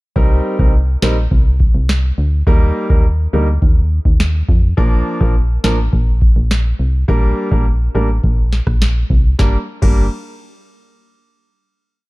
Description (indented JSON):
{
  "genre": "dancehall",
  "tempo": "104 BPM",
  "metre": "4/4",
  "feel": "straight",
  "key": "G minor",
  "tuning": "A4 = 436 Hz",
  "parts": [
    { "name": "clear baby grand piano", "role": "accompaniment", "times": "0.2-10.0 s", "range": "F3 to Bb4", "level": "-20 LUFS", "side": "equal", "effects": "sidechain pumping" },
    { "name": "solid FM bass", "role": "bass", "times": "0.2-10.1 s", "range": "G1 to F2", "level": "-15 LUFS", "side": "equal", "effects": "none" },
    { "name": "booming analog drum machine", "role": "drums", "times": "0.2-10.0 s", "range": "crash cymbal, kick drum, rim click, snare drum", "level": "-13 LUFS", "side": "equal", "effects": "none" }
  ],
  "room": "little or no reverb",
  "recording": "dark, warm production",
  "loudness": "-12 LUFS",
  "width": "side -21 dB against mid",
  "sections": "0.2-9.4 verse; 9.4-11.7 final chord",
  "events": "none",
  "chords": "0.2 Cm7; 2.5 Eb; 4.8 Bb; 7.1 Gm"
}